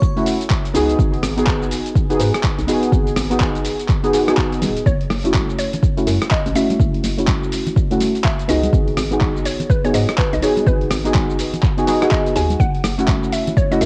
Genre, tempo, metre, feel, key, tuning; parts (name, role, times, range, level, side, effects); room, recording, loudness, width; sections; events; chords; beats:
deep house; 124 BPM; 4/4; swing 61% on 16ths; A4 = 441 Hz
deep mellow chord stab; stabs; 0.0-13.9 s; A3 to G#4; -22 LUFS; equal; chorus, cassette tape, sidechain pumping, analog delay
dusty soul sampler-style drum kit; drums; 0.0-13.9 s; handclaps, hi-hat, rim click, shaker; -28 LUFS; equal; overdrive, cassette tape
electronic kick drum; drums; 0.0-13.7 s; -21 LUFS; equal; cassette tape
hollow knocking FM bass; bass; 0.7-13.9 s; D#1 to G#2; -26 LUFS; equal; sidechain pumping
mallet-like synth pluck; melody; 4.9-13.9 s; B4 to G#5; -28 LUFS; equal; chorus, cassette tape, analog delay
congas; percussion; 5.3-13.9 s; -31 LUFS; equal; sidechain pumping on perc
moderate spring reverb, RT60 1.3 s, digital ambience; home recording on cassette; -18 LUFS; mono
0.0-13.9 A section
0.0 F#m7; 1.0 G#m7; 4.9 F#m7; 8.7 G#m7; 12.6 F#m7
0.02 0.50 | 0.99 1.47 1.96 2.44 | 2.92 3.41 3.89 4.38 | 4.86 5.34 5.83 6.31 | 6.79 7.28 7.76 8.25 | 8.73 9.21 9.70 10.18 | 10.66 11.15 11.63 12.12 | 12.60 13.09 13.57